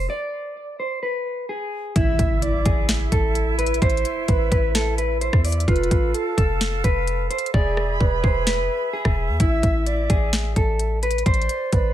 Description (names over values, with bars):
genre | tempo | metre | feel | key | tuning
hip hop, trap | 129 BPM | 4/4 | half-time | A harmonic minor | A4 = 440 Hz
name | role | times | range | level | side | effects
mellow electric guitar | melody | 0.0-11.9 s | E4 to D5 | -26 LUFS | left 1 dB | low-pass filter
warm 808-style bass | bass | 0.0-11.9 s | E1 to E2 | -23 LUFS | equal | none
breathy flute-like synth lead | second line | 2.0-11.9 s | G#4 to E5 | -29 LUFS | right 3 dB | chorus, ping-pong delay
flute section | sustained chords | 2.0-11.9 s | E4 to B5 | -30 LUFS | right 5 dB | none
trap drum kit | drums | 2.0-11.8 s | hi-hat, kick drum, rim click, snare drum | -21 LUFS | equal | none
impact | sound effects | 2.0-3.8 s | none | -31 LUFS | equal | none
room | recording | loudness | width
little or no reverb | none | -19 LUFS | side -12 dB against mid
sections
0.0-2.0 A section; 2.0-11.9 B section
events
break 0.1-2.0; impact 2.0-3.8; hi-hats muted 7.5-9.4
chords
0.1 N.C.; 2.0 Am; 5.7 F; 7.5 E; 9.4 Am